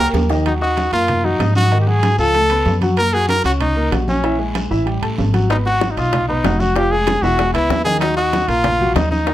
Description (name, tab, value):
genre	Afro-Cuban jazz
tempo	190 BPM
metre	4/4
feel	straight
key	Eb minor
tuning	A4 = 439 Hz
part	clear trumpet	melody	0.0-9.3 s	Db4 to Bb4	-18 LUFS	equal	plate reverb
part	warm baby grand piano	accompaniment	0.0-9.3 s	Eb3 to Gb6	-22 LUFS	left 1 dB	none
part	upright bass	bass	0.0-9.3 s	Fb1 to Ab2	-19 LUFS	equal	none
part	congas	percussion	0.1-9.3 s	none	-25 LUFS	equal	none
part	cowbell and bongos	percussion	0.1-0.5, 5.5-9.3 s	none	-24 LUFS	left 6 dB	none
part	guiro	percussion	0.1-9.3 s	none	-35 LUFS	right 2 dB	none
part	timbales and agogo bells	percussion	0.1-9.3 s	none	-28 LUFS	right 7 dB	none
room	light reverb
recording	none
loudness	-14 LUFS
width	side -13 dB against mid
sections	0.5-9.3 A section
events	drum fill 0.0-0.5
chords	0.5 Ebm; 1.7 Ab5; 2.3 Gbmadd11/Db; 3.0 Gb; 4.2 Amaj7; 4.9 Gbmadd9; 5.5 Abm7; 6.8 Fm; 7.4 E6; 8.0 Ebm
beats	0.14 | 0.46 0.77 1.09 1.40 | 1.72 2.03 2.35 2.66 | 2.98 3.29 3.61 3.92 | 4.24 4.55 4.87 5.18 | 5.50 5.81 6.13 6.44 | 6.76 7.07 7.39 7.70 | 8.02 8.33 8.65 8.96 | 9.28